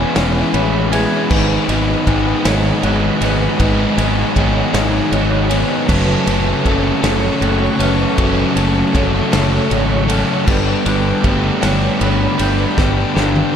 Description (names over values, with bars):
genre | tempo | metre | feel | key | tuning
post-rock | 52 BPM (dotted quarters) | 6/8 | straight | F# dorian | A4 = 440 Hz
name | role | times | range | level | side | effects
warm chamber string section | sustained chords | 0.0-13.6 s | D4 to C#6 | -29 LUFS | left 2 dB | none
electric guitar through a small old amp | arpeggios | 0.0-13.6 s | G#2 to B4 | -24 LUFS | left 1 dB | wide subtle chorus, digital delay
vibraphone with medium hard mallets | arpeggios | 0.0-13.2 s | B4 to C#5 | -27 LUFS | right 6 dB | digital delay
crunchy overdriven guitar | riff | 0.0-13.6 s | F#2 to A4 | -19 LUFS | left 9 dB | slapback echo
sludgy distorted guitar | riff | 0.0-13.6 s | F#2 to E4 | -19 LUFS | right 8 dB | overdrive, slapback echo
growling fingered electric bass | bass | 0.0-13.4 s | E1 to A1 | -19 LUFS | equal | overdrive
loose indie drum kit | drums | 0.2-13.5 s | crash cymbal, kick drum, ride cymbal, snare drum, toms | -21 LUFS | equal | none
room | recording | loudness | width
light reverb, studio ambience | lossy compression artefacts | -13 LUFS | side -8 dB against mid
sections
0.0-13.6 A section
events
drum fill 12.8-13.6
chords
0.0 E6; 1.3 G#m7; 5.9 F#m; 10.5 Gadd9